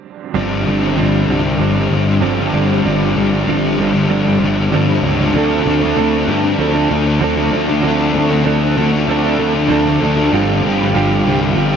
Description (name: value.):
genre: rock.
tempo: 96 BPM.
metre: 4/4.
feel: straight.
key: unclear.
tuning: A4 = 444 Hz.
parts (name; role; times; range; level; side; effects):
direct-recorded clean electric guitar; riff; 0.3-11.8 s; G2 to A4; -18 LUFS; right 7 dB; reverse reverb.
thick fuzz guitar; riff; 0.4-11.8 s; G2 to D4; -16 LUFS; left 5 dB; distortion, ensemble chorus.
fuzz picked electric bass; bass; 0.4-11.8 s; G1 to G2; -18 LUFS; equal; overdrive.
room: wet huge ambient reverb, RT60 4.0 s.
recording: dreamy mix soaked in reverb, nothing above 7.5 kHz.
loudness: -12 LUFS.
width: side -7 dB against mid.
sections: 0.4-11.8 A section.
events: none.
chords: 0.4 G7sus4; 5.3 Dm7; 10.3 G7sus4.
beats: | 0.37 0.99 1.61 2.23 | 2.86 3.48 4.10 4.72 | 5.35 5.97 6.59 7.21 | 7.84 8.46 9.09 9.71 | 10.33 10.96 11.58.